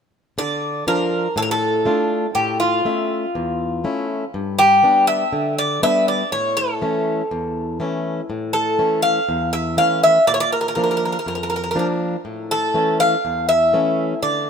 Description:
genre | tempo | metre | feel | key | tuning
greek folk, Greek bouzouki band | 121 BPM | 4/4 | straight | unclear | A4 = 439 Hz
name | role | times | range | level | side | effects
Greek bouzouki | melody | 0.4-14.5 s | F4 to F5 | -18 LUFS | equal | none
fingerpicked plugged-in swing-style acoustic guitar | accompaniment | 0.4-14.5 s | E2 to E5 | -23 LUFS | left 1 dB | none
room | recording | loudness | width
moderate plate reverb, RT60 3.2 s | minimal, uncompressed stereo recording | -17 LUFS | side -7 dB against mid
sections
0.4-14.5 A section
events
none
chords
0.4 Dm; 2.4 A; 4.3 G; 6.3 A; 10.3 Bb; 12.3 A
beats
| 0.37 0.87 1.36 1.86 | 2.36 2.85 3.35 3.84 | 4.34 4.83 5.33 5.83 | 6.32 6.82 7.31 7.81 | 8.30 8.79 9.29 9.78 | 10.28 10.77 11.27 11.76 | 12.26 12.75 13.24 13.74 | 14.23

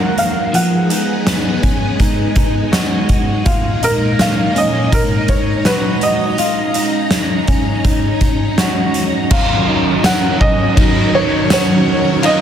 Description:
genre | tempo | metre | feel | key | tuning
dream pop | 82 BPM | 4/4 | straight | Eb minor | A4 = 440 Hz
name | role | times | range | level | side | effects
felt-muted upright piano | melody | 0.0-12.4 s | Bb4 to Gb5 | -18 LUFS | right 1 dB | digital delay
string machine, violins | sustained chords | 0.0-12.4 s | Bb2 to Bb5 | -19 LUFS | equal | ensemble chorus
electric guitar at the edge of break-up | arpeggios | 0.0-12.4 s | F3 to Gb4 | -20 LUFS | left 2 dB | wide subtle chorus, digital delay
oversized low-tuned drum kit | drums | 0.2-12.4 s | crash cymbal, hi-hat, kick drum, ride cymbal, snare drum, tambourine | -16 LUFS | equal | none
crunchy overdriven guitar | accompaniment | 9.3-12.4 s | Eb3 to Bb4 | -19 LUFS | right 4 dB | harmonic tremolo, ensemble chorus
room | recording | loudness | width
moderate lush hall reverb, RT60 2.7 s | dense, heavily limited modern master | -12 LUFS | side -9 dB against mid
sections
0.0-9.3 A section; 9.3-12.4 B section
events
none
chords
0.0 Ebm; 0.5 Abm7; 3.5 Ebm; 6.4 Ebm7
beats
| 0.53 1.26 2.00 2.73 | 3.46 4.19 4.92 5.66 | 6.39 7.12 7.85 8.58 | 9.31 10.04 10.78 11.51 | 12.24

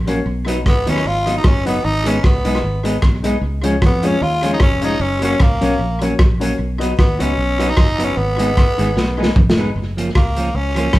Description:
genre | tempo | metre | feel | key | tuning
ska | 152 BPM | 4/4 | swing 55% on 8ths | F# major | A4 = 440 Hz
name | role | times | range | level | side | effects
fingered electric bass | bass | 0.0-11.0 s | E#1 to E#2 | -21 LUFS | equal | none
clean electric guitar | accompaniment | 0.1-10.9 s | E#3 to D#4 | -23 LUFS | right 2 dB | none
dark upright piano | stabs | 0.1-9.7 s | C#4 to D#5 | -24 LUFS | left 4 dB | none
crunchy breakbeat drum kit | drums | 0.1-11.0 s | hi-hat, kick drum, rim click, snare drum, toms | -16 LUFS | equal | none
growling tenor saxophone | melody | 0.7-11.0 s | A#3 to E#4 | -20 LUFS | equal | none
room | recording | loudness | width
moderate large studio reverb, RT60 0.8 s | band playing live in one room | -14 LUFS | side -17 dB against mid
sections
0.0-9.8 A section; 9.8-11.0 B section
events
drum fill 9.0-9.8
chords
0.3 B; 1.8 G#m; 3.4 C#; 5.0 F#; 6.6 B; 8.2 G#m; 9.8 F#maj7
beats
| 0.25 0.65 1.05 1.44 | 1.84 2.23 2.63 3.03 | 3.42 3.82 4.21 4.61 | 5.00 5.40 5.80 6.19 | 6.59 6.98 7.38 7.78 | 8.17 8.57 8.96 9.36 | 9.76 10.15 10.55 10.95

